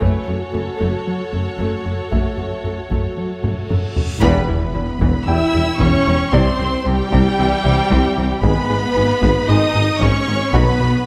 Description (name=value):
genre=cinematic, hybrid orchestral and electronic film score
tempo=114 BPM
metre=4/4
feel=straight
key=unclear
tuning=A4 = 439 Hz
part: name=rich symphonic violin section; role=second line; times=0.0-11.1 s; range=G4 to E5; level=-29 LUFS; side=equal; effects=none
part: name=warm symphonic viola section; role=accompaniment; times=0.0-11.1 s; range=G3 to F#4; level=-26 LUFS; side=equal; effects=none
part: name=tight sequenced synth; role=arpeggios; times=0.0-11.0 s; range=C3 to B4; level=-32 LUFS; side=equal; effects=none
part: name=rubbery square bass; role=riff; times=0.0-11.0 s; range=C2 to F#3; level=-26 LUFS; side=equal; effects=none
part: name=dark symphonic double bass section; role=bass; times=0.0-10.9 s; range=E1 to C2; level=-26 LUFS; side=equal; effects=none
part: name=warm symphonic cello section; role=bass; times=0.0-10.9 s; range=E2 to C3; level=-26 LUFS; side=equal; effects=none
part: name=solo taiko drums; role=drums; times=0.0-11.0 s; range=none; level=-26 LUFS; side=equal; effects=none
part: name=felt-muted upright piano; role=texture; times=0.0-10.6 s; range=C4 to G#5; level=-33 LUFS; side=equal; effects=digital delay
part: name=reverse cymbal and impact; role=sound effects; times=3.8-6.3 s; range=none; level=-32 LUFS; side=equal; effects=none
part: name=warm symphonic violin section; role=melody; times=4.2-11.1 s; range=G5 to E6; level=-26 LUFS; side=equal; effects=none
part: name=mellow French horn section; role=sustained chords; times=4.2-11.1 s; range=G3 to B4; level=-27 LUFS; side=equal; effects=none
part: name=warm trombone section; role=sustained chords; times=4.2-10.7 s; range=D#3 to G#3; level=-30 LUFS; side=equal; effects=none
part: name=mellow tuba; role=bass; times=4.2-10.9 s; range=E1 to C2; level=-26 LUFS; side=equal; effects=none
room=wet scoring stage reverb, RT60 1.8 s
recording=none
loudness=-17 LUFS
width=mono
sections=0.0-4.2 A section; 4.2-11.1 B section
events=drum fill 3.4-4.2; reverse cymbal 3.8-4.2; band accent 4.2-4.8; impact 4.2-6.3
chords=0.0 F#m; 4.2 Em; 6.3 C; 8.4 G#m; 10.5 B